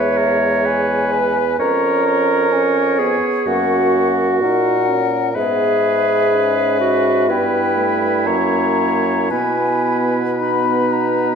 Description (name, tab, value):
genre	classical, slow romantic movement for wind quintet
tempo	55-65 BPM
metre	4/4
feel	rubato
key	unclear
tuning	A4 = 440 Hz
part	mellow hollow silver concert flute	melody	0.0-11.4 s	E5 to B5	-20 LUFS	left 9 dB	none
part	clear oboe	second line	0.0-11.4 s	A#4 to C#5	-24 LUFS	left 4 dB	none
part	bright clarinet	accompaniment	0.0-11.4 s	D#4 to C#5	-19 LUFS	right 6 dB	none
part	warm French horn	accompaniment	0.0-11.4 s	G#3 to D#4	-24 LUFS	equal	none
part	mellow bassoon	bass	0.0-11.4 s	E2 to B2	-21 LUFS	right 2 dB	none
room	wet recital hall reverb, RT60 1.6 s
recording	dark, warm production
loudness	-14 LUFS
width	side -6 dB against mid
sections	0.0-11.4 A section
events	none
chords	0.0 E; 1.6 C#7/E#; 3.5 F#; 5.3 E/G#; 7.3 G69; 8.3 F#7; 9.3 B